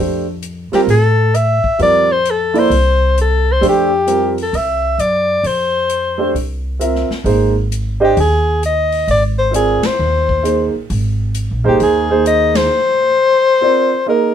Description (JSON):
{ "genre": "modal jazz", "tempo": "132 BPM", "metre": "4/4", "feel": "swing 66% on 8ths", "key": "unclear", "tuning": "A4 = 441 Hz", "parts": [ { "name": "warm concert grand piano", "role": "accompaniment", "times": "0.0-14.3 s", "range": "G3 to E5", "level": "-16 LUFS", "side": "right 4 dB", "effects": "none" }, { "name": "upright bass", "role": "bass", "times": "0.0-12.7 s", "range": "G1 to A2", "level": "-18 LUFS", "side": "equal", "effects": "none" }, { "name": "swinging big-band drum kit", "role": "drums", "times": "0.4-12.6 s", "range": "hi-hat, kick drum, ride cymbal, snare drum", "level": "-27 LUFS", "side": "left 2 dB", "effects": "none" }, { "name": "warm soprano saxophone", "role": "melody", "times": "0.8-14.3 s", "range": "G4 to E5", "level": "-14 LUFS", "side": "left 2 dB", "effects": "none" } ], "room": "light reverb", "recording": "minimal, uncompressed stereo recording", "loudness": "-12 LUFS", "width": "side -9 dB against mid", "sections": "0.0-14.3 A section", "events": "band accent 9.8, 12.5", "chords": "0.0 Fadd9; 7.3 Abadd9" }